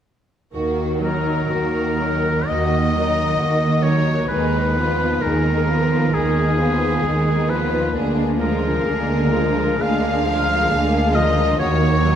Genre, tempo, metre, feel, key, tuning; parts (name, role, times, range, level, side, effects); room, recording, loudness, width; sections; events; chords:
classical, slow romantic movement for symphony orchestra; 66 BPM; 4/4; rubato; Eb minor; A4 = 440 Hz
clear symphonic violin section; second line; 0.5-12.2 s; D4 to Cb5; -27 LUFS; left 3 dB
rich symphonic viola section; accompaniment; 0.6-12.2 s; Eb3 to Cb4; -24 LUFS; right 1 dB
rich symphonic cello section; bass; 0.6-12.2 s; D3 to Eb3; -23 LUFS; right 2 dB
rich symphonic double bass section; bass; 0.6-12.2 s; D2 to Eb2; -24 LUFS; right 1 dB
rich studio violin section; melody; 1.0-12.2 s; Ab4 to F5; -28 LUFS; left 4 dB
clear oboe; second line; 1.0-12.2 s; Ab4 to F5; -22 LUFS; equal
wet scoring stage reverb, RT60 1.9 s; -17 LUFS; side -9 dB against mid
0.6-12.2 A section
0.6 Ebm; 4.3 Fm7b5/Eb; 7.9 Bb7/D; 11.6 Ebm